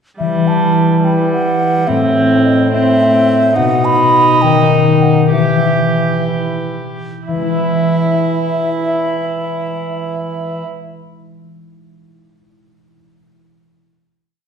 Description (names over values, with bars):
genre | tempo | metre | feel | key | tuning
classical, renaissance-style consort dance | 58-72 BPM (dotted quarters) | 6/8 | straight | E harmonic minor | A4 = 441 Hz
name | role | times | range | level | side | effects
baroque flute | melody | 0.2-10.6 s | D#5 to B5 | -17 LUFS | equal | none
concert harp | accompaniment | 0.2-11.2 s | A2 to E5 | -17 LUFS | left 5 dB | none
rich viola | accompaniment | 0.2-10.6 s | G3 to G4 | -18 LUFS | right 2 dB | none
clear trombone | bass | 0.2-10.6 s | A2 to E3 | -19 LUFS | right 3 dB | none
room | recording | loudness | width
wet recital hall reverb, RT60 1.4 s | dark, warm production | -11 LUFS | side -7 dB against mid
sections
0.2-7.3 A section; 7.3-11.4 final chord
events
slowing down 2.7-7.3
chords
0.2 Em; 1.9 Am; 3.6 B; 5.3 Em; 7.3 E